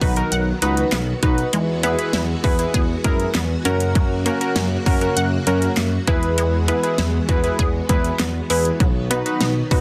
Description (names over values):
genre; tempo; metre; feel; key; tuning
synth-pop; 99 BPM; 4/4; straight; unclear; A4 = 441 Hz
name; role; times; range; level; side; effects
warm analog keys; accompaniment; 0.0-9.8 s; C#4 to B4; -25 LUFS; equal; chorus, plate reverb
string machine, violins; sustained chords; 0.0-9.8 s; C#3 to F#4; -30 LUFS; equal; ensemble chorus
resonant blip pluck; arpeggios; 0.0-9.8 s; F#3 to F#5; -30 LUFS; equal; chorus, tape echo
smooth synth bass; bass; 0.0-9.8 s; B1 to F#2; -25 LUFS; equal; none
pop drum kit; drums; 0.0-9.8 s; handclaps, hi-hat, kick drum, snare drum; -23 LUFS; equal; overdrive
room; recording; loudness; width
moderate booth ambience, RT60 0.2 s; dense, heavily limited modern master; -20 LUFS; mono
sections
0.0-9.8 A section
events
none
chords
0.0 B; 1.5 Eadd9; 3.7 F#; 6.1 Eadd9; 8.8 B